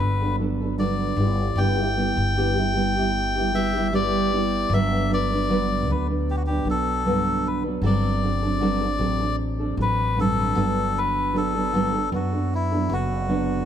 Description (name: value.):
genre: acoustic pop.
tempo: 77 BPM.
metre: 4/4.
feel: swing 55% on 16ths.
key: G major.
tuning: A4 = 440 Hz.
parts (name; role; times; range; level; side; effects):
melodica; melody; 0.0-13.7 s; E4 to G5; -26 LUFS; left 2 dB; tape echo.
nylon-string guitar; accompaniment; 0.0-13.7 s; G2 to B4; -24 LUFS; right 2 dB; none.
upright bass; bass; 0.0-13.6 s; F#1 to F#2; -26 LUFS; left 1 dB; none.
room: light reverb.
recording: none.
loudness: -20 LUFS.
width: side -9 dB against mid.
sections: 0.0-4.7 A section; 4.7-13.7 B section.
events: none.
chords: 0.0 Bm7; 1.2 Em7/G; 4.7 Gmaj7; 7.8 D7/G; 10.6 Bm7/G.